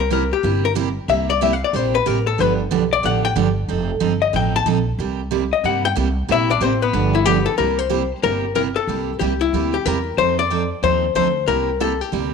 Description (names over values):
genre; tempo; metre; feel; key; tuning
country, western swing; 185 BPM; 4/4; swing 64% on 8ths; C mixolydian; A4 = 441 Hz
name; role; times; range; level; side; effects
archtop guitar, miked and amplified; melody; 0.0-12.3 s; B3 to A5; -19 LUFS; left 9 dB; none
upright bass; bass; 0.0-12.3 s; F1 to G2; -23 LUFS; equal; none
picked steel-string acoustic guitar; accompaniment; 0.1-12.3 s; C3 to A4; -22 LUFS; right 12 dB; none
room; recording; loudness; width
moderate echo chamber reverb, RT60 1.4 s, small room reverb; 1960s-style stereo with parts hard left and right; -17 LUFS; side -5 dB against mid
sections
0.0-7.6 A section; 7.6-12.3 B section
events
hollow-body jazz guitar solo 0.0-7.6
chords
0.0 C7; 2.4 G7; 3.7 F7; 5.0 C7; 6.9 G7; 7.6 C7; 10.2 F7; 11.5 C7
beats
0.11 0.44 0.76 | 1.09 1.41 1.74 2.06 | 2.39 2.71 3.04 3.36 | 3.68 4.01 4.33 4.66 | 4.98 5.31 5.63 5.96 | 6.28 6.61 6.93 7.25 | 7.58 7.90 8.23 8.55 | 8.88 9.21 9.53 9.86 | 10.18 10.51 10.83 11.16 | 11.48 11.81 12.13